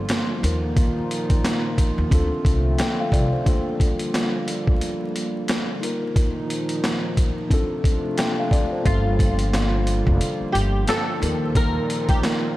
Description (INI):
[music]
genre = hip hop, boom-bap hip-hop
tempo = 89 BPM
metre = 4/4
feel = swing 60% on 16ths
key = G minor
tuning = A4 = 440 Hz
[part]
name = mellow tine electric piano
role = accompaniment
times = 0.0-12.6 s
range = Bb3 to G5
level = -27 LUFS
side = left 2 dB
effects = medium stereo tremolo, cassette tape, high-pass filter, low-pass filter
[part]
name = dark analog pad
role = sustained chords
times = 0.0-12.6 s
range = Bb2 to F4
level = -28 LUFS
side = right 1 dB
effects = chorus, high-pass filter, low-pass filter
[part]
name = upright bass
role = bass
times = 0.0-3.3, 8.9-11.8 s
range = F1 to Eb2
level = -23 LUFS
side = equal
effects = none
[part]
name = boom bap sampler-style drum kit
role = drums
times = 0.1-12.4 s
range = hi-hat, kick drum, snare drum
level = -22 LUFS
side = equal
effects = none
[part]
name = flamenco guitar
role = melody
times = 8.9-12.2 s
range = F4 to Bb4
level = -27 LUFS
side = left 1 dB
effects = analog chorus, high-pass filter, low-pass filter, tape echo
[sound]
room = light reverb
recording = vinyl crackle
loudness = -19 LUFS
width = side -16 dB against mid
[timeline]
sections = 0.0-8.9 A section; 8.9-12.6 B section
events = none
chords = 0.4 Ebsus2; 2.1 Dm7; 3.5 Gm7; 5.8 Ebsus2; 7.5 Dm7; 8.9 Gm7; 11.2 Ebsus2